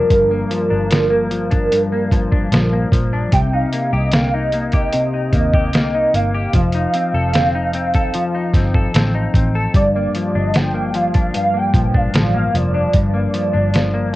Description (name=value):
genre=indie pop, bedroom pop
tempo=75 BPM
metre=4/4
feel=straight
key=unclear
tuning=A4 = 440 Hz
part: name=warm velvety synth lead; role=melody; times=0.0-14.2 s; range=Bb4 to G5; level=-20 LUFS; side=right 1 dB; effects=ensemble chorus, cassette tape
part: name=semi-hollow electric guitar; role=accompaniment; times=0.0-14.2 s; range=G2 to A4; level=-20 LUFS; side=left 2 dB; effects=analog chorus, vibrato effect, cassette tape
part: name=vintage muted fingered electric bass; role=bass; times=0.0-14.2 s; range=F1 to Eb2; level=-20 LUFS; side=equal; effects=tube saturation
part: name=lo-fi sampler-style drum kit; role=drums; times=0.1-13.9 s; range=hi-hat, kick drum, snare drum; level=-17 LUFS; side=equal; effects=cassette tape
room=light reverb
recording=home recording on cassette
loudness=-14 LUFS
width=side -17 dB against mid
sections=0.0-14.2 A section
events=none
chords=0.0 Gm7; 3.3 Cm7; 6.5 F7; 9.7 Gm7